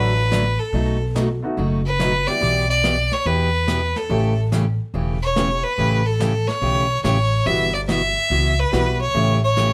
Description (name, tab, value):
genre	country, western swing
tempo	143 BPM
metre	4/4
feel	swing 67% on 8ths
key	unclear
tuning	A4 = 440 Hz
part	clear fiddle	melody	0.0-9.7 s	A4 to E5	-23 LUFS	equal	none
part	clear upright piano	accompaniment	0.0-9.4 s	F#3 to G4	-30 LUFS	equal	none
part	picked steel-string acoustic guitar	accompaniment	0.0-9.7 s	B2 to G4	-26 LUFS	equal	none
part	upright bass	bass	0.0-9.7 s	E1 to E2	-24 LUFS	equal	none
part	jazz brush drum kit	drums	0.3-9.7 s	brushed snare drum, hi-hat, snare drum	-31 LUFS	equal	none
room	light reverb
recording	none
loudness	-20 LUFS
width	mono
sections	0.0-9.7 A section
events	none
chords	0.0 D; 0.7 B7; 2.4 Em/B; 4.1 A7; 7.5 Emadd9/G; 9.1 A7